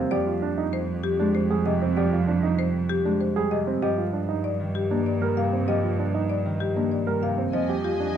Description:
classical, minimalist pattern music; 194 BPM; 6/4; straight; A4 = 440 Hz
Celtic harp; accompaniment; 0.0-8.2 s; C3 to Bb3; -28 LUFS; left 2 dB
dark grand piano; arpeggios; 0.0-8.2 s; C4 to Bb4; -28 LUFS; right 8 dB
marimba with medium hard mallets; melody; 0.1-8.0 s; G4 to F5; -29 LUFS; left 8 dB
rich cello; bass; 0.1-8.2 s; F2 to G2; -27 LUFS; right 3 dB
warm symphonic violin section; sustained chords; 7.5-8.2 s; Eb5 to Ab5; -34 LUFS; left 4 dB
moderate large studio reverb, RT60 1.3 s; dark, warm production; -22 LUFS; side -9 dB against mid
0.0-7.5 A section
0.1 Fmadd9; 3.8 Cm9/G; 7.5 Fm9

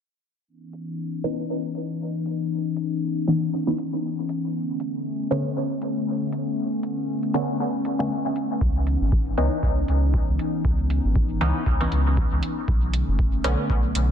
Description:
dub techno; 118 BPM; 4/4; swing 56% on 16ths; A4 = 436 Hz
warbly tape-like pad; sustained chords; 0.5-14.1 s; D3 to D#4; -27 LUFS; left 2 dB; chorus, built-in reverb, sidechain pumping
electronic hi-hat; drums; 0.7-14.1 s; -35 LUFS; right 3 dB
filtered dub chord stab; stabs; 1.2-13.6 s; D3 to D#4; -26 LUFS; equal; chorus, phaser, sidechain pumping, dub echo
soft dub sub bass; bass; 8.6-14.1 s; F#1 to C#2; -23 LUFS; equal; sidechain pumping
electronic kick drum; drums; 8.6-13.8 s; -24 LUFS; equal
light reverb; dense, heavily limited modern master, low-pass filter; -22 LUFS; side -8 dB against mid
0.5-14.1 A section
filter sweep 0.5-14.1
0.5 C#m9; 4.5 Bm9; 8.6 C#m9; 12.7 Bm9

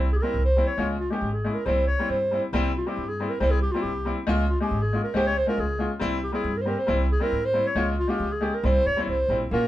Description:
klezmer; 137 BPM; 2/4; straight; C phrygian dominant; A4 = 445 Hz
bright upright piano; accompaniment; 0.0-9.7 s; G3 to Ab4; -27 LUFS; left 2 dB
upright bass; bass; 0.0-9.7 s; Ab1 to Ab2; -27 LUFS; equal
mellow clarinet; melody; 0.1-9.7 s; F4 to Db5+22c; -26 LUFS; equal
light reverb; band playing live in one room; -22 LUFS; side -14 dB against mid
0.0-2.5 A section; 2.5-9.5 A section
0.0 C; 0.8 Db; 1.6 C; 4.3 Db; 6.0 C; 7.8 Db; 8.6 C

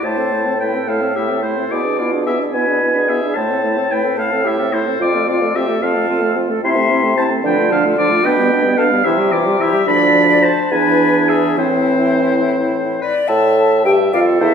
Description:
quick classical-period movement for wind quintet; 73 BPM (dotted quarters); 6/8; rubato; A minor; A4 = 441 Hz
silver concert flute; melody; 0.0-14.5 s; E4 to A5; -21 LUFS; left 4 dB
clear oboe; second line; 0.0-14.5 s; B4 to C6; -19 LUFS; left 2 dB
bright clarinet; accompaniment; 0.0-14.5 s; B3 to A4; -20 LUFS; right 4 dB
warm French horn; accompaniment; 0.0-14.5 s; E3 to A4; -21 LUFS; equal
mellow bassoon; bass; 0.0-14.5 s; D2 to D3; -19 LUFS; right 1 dB
wet recital hall reverb, RT60 1.8 s; heard from further back in the room; -13 LUFS; side -7 dB against mid
0.0-13.3 A section; 13.3-14.5 A section
0.0 Am; 1.7 E7/B; 3.4 Am; 5.0 F; 6.6 Am/C; 7.4 Dm; 8.2 G/B; 9.1 C; 9.9 Dm; 10.7 E7; 11.6 Am; 13.3 A5

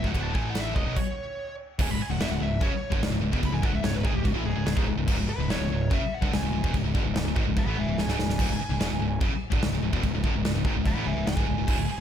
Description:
heavy metal; 146 BPM; 4/4; straight; C# minor; A4 = 440 Hz
high-gain lead guitar; melody; 0.0-12.0 s; E4 to B5; -35 LUFS; right 1 dB; distortion, ping-pong delay
high-gain distorted guitar; riff; 0.0-11.9 s; C#2 to A3; -30 LUFS; left 12 dB; distortion
scooped high-gain guitar; riff; 0.0-11.9 s; C#2 to A3; -32 LUFS; right 11 dB; distortion
fuzz picked electric bass; bass; 0.0-12.0 s; C#1 to B1; -30 LUFS; right 1 dB; overdrive
big rock drum kit; drums; 0.0-11.8 s; china cymbal, crash cymbal, kick drum, ride cymbal, snare drum, splash cymbal; -28 LUFS; equal
light reverb; -24 LUFS; side -9 dB against mid
0.0-1.8 A section; 1.8-12.0 B section
stop 1.0-1.8; lead electric guitar solo 1.8-12.0; drum fill 8.0-8.4
0.3 A5; 0.8 C#5; 1.4 N.C.; 1.8 C#m

